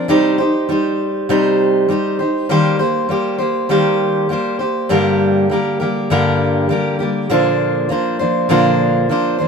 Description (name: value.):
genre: pop.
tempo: 100 BPM.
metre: 4/4.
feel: swing 60% on 16ths.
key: G minor.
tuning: A4 = 440 Hz.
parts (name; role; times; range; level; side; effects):
fingerpicked steel-string acoustic guitar; solo; 0.0-9.5 s; G2 to C5; -14 LUFS; equal; none.
room: moderate plate reverb, RT60 3.2 s.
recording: minimal, uncompressed stereo recording.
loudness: -14 LUFS.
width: side -5 dB against mid.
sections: 0.0-4.9 A section; 4.9-9.5 B section.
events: none.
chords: 0.1 Cm; 2.5 Eb6; 4.9 Gm; 7.3 Bbadd9.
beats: | 0.10 0.70 1.30 1.90 | 2.50 3.10 3.70 4.29 | 4.89 5.49 6.09 6.69 | 7.29 7.89 8.49 9.09.